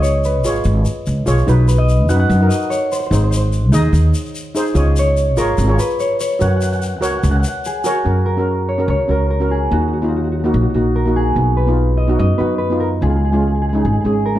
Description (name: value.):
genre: calypso.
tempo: 146 BPM.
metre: 4/4.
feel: straight.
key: F# major.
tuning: A4 = 441 Hz.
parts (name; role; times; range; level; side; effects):
concert harp; melody; 0.0-14.4 s; F#4 to F#5; -21 LUFS; left 1 dB; none.
steel pan; accompaniment; 0.0-14.4 s; G#3 to D#5; -20 LUFS; right 1 dB; none.
upright bass; bass; 0.0-14.4 s; G#1 to F#2; -16 LUFS; equal; none.
tube shaker; percussion; 0.0-7.9 s; none; -31 LUFS; left 5 dB; none.
room: light reverb.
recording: dark, warm production.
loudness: -14 LUFS.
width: side -13 dB against mid.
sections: 0.0-8.1 A section; 8.1-14.4 B section.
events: none.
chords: 0.0 C#; 1.5 Bmaj7; 3.1 G#; 4.8 C#; 6.4 F#; 9.7 D#madd9; 11.4 B; 13.0 C#.